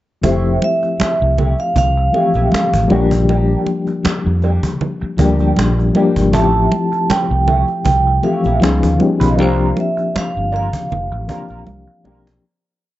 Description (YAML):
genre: lush 1970s-style soul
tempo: 79 BPM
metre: 4/4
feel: swing 54% on 16ths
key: F major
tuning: A4 = 440 Hz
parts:
  - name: mellow reed electric piano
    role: accompaniment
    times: 0.2-12.5 s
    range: E3 to Ab4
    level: -18 LUFS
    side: left 3 dB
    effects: medium tremolo
  - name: electric guitar at the edge of break-up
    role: riff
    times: 0.2-12.3 s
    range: A3 to Cb5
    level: -25 LUFS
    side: right 4 dB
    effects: wah
  - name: overdriven fingered electric bass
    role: bass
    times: 0.2-12.4 s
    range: F1 to F2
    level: -17 LUFS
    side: equal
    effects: none
  - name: cajon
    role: drums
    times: 0.2-12.4 s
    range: none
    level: -22 LUFS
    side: equal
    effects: none
  - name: congas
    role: percussion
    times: 0.2-12.2 s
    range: none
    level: -22 LUFS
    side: right 3 dB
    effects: none
  - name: vibraphone with medium mallets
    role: melody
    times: 0.3-12.0 s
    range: C5 to A5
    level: -19 LUFS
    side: right 2 dB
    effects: none
room: light reverb, small room reverb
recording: nothing above 7.8 kHz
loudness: -13 LUFS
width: side -15 dB against mid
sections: 0.2-12.4 verse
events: fade-out 9.4-12.4; drum fill 11.7-12.4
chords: 0.2 Fmaj9; 2.9 Bb6; 6.3 Fmaj9/A; 8.6 Db9; 9.4 C9sus4